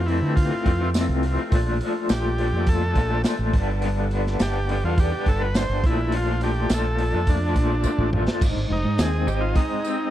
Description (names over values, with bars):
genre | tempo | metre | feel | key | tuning
psychedelic rock | 104 BPM | 4/4 | straight | unclear | A4 = 440 Hz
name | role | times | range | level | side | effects
combo organ | melody | 0.0-10.1 s | D4 to C5 | -28 LUFS | right 1 dB | tape echo
electric guitar through a small old amp | riff | 0.0-10.1 s | F2 to Eb4 | -26 LUFS | left 2 dB | tremolo
growling fingered electric bass | bass | 0.0-9.5 s | F1 to D3 | -24 LUFS | equal | overdrive
crunchy breakbeat drum kit | drums | 0.1-9.7 s | crash cymbal, hi-hat, kick drum, snare drum, toms | -23 LUFS | equal | none
tambourine | percussion | 0.9-10.0 s | none | -40 LUFS | right 19 dB | none
ensemble organ-string | sustained chords | 8.4-10.1 s | C5 to Eb6 | -34 LUFS | right 5 dB | ensemble chorus
room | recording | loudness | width
small room ambience | dry, close 1970s-style studio recording | -20 LUFS | side -12 dB against mid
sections
0.0-8.4 A section; 8.4-10.1 B section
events
drum fill 7.8-8.4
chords
0.0 Fmaj7; 1.5 Bbmaj7; 3.5 G; 5.8 Bbmaj7; 8.4 Ab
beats
0.37 0.95 | 1.53 2.10 2.68 3.26 | 3.83 4.41 4.98 5.56 | 6.13 6.70 7.28 7.85 | 8.42 8.99 9.56